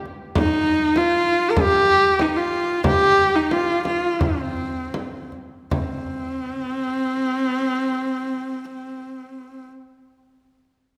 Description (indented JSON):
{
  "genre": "mongolian traditional, Mongolian folk",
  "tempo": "75-100 BPM",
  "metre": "4/4",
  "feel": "straight",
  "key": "C yu mode",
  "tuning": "A4 = 438 Hz",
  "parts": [
    { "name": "frame drum", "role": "percussion", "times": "0.1-6.1 s", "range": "none", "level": "-28 LUFS", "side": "equal", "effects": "none" },
    { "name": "clear horsehead fiddle", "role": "melody", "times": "0.4-9.7 s", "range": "C4 to Bb4", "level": "-22 LUFS", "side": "equal", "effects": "none" }
  ],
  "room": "wet concert hall reverb, RT60 2.2 s",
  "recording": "none",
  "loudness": "-21 LUFS",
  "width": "mono",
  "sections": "0.0-5.7 A section; 5.7-8.9 B section",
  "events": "slowing down 0.3-5.7",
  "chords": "none"
}